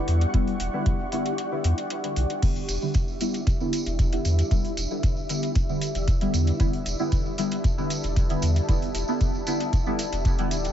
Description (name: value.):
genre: dub techno.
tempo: 115 BPM.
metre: 4/4.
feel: straight.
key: E dorian.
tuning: A4 = 442 Hz.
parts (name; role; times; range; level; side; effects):
deep dark ambient pad; sustained chords; 0.0-10.7 s; G4 to A5; -33 LUFS; left 1 dB; chorus, built-in reverb, sidechain pumping.
deep mellow chord stab; stabs; 0.0-10.6 s; D3 to E4; -29 LUFS; equal; chorus, phaser, vintage 12-bit sampler grit, dub echo.
flickering grainy texture; texture; 0.0-10.7 s; E4 to C#6; -38 LUFS; equal; built-in reverb, sidechain pumping.
pure sine sub bass; bass; 0.1-10.7 s; D1 to E2; -25 LUFS; equal; sidechain pumping.
booming analog drum machine; drums; 0.1-10.7 s; crash cymbal, hi-hat; -37 LUFS; left 1 dB; none.
electronic kick drum; drums; 0.3-10.4 s; none; -24 LUFS; equal; none.
tambourine; percussion; 2.4-10.7 s; none; -37 LUFS; right 3 dB; none.
room: digital ambience.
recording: nothing above 7.7 kHz.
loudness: -22 LUFS.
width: side -10 dB against mid.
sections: 0.0-10.7 A section.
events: kick drops out 1.4-2.4.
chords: 0.0 Em7.